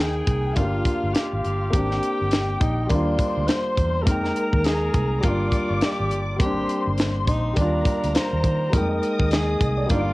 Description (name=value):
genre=lush 1970s-style soul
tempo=103 BPM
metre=4/4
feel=swing 58% on 16ths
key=F dorian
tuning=A4 = 440 Hz
part: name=breathy alto saxophone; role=melody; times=0.0-10.1 s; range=D4 to C5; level=-26 LUFS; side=right 1 dB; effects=cassette tape
part: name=dark studio string section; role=second line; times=0.0-10.1 s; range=F4 to Eb6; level=-31 LUFS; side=left 2 dB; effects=cassette tape, plate reverb
part: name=warm grand piano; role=accompaniment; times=0.0-10.1 s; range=G3 to G5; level=-27 LUFS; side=left 1 dB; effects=cassette tape
part: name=vintage muted fingered electric bass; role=bass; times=0.0-10.1 s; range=G1 to Eb3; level=-25 LUFS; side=equal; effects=none
part: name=tight funk drum kit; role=drums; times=0.3-10.1 s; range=hi-hat, kick drum, snare drum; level=-23 LUFS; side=equal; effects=cassette tape
part: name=clean electric guitar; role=riff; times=8.7-10.1 s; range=F4 to Eb5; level=-32 LUFS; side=right 4 dB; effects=wah, cassette tape
room=light reverb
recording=home recording on cassette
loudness=-20 LUFS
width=side -20 dB against mid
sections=0.0-10.1 A section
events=none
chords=0.0 Fm11 (rootless); 0.6 Gm7; 1.7 Abmaj9#11; 2.9 Ebmaj7; 4.1 Fm11; 5.2 Gm7; 6.4 Abmaj9#11; 7.6 Ebmaj7; 8.7 Fm11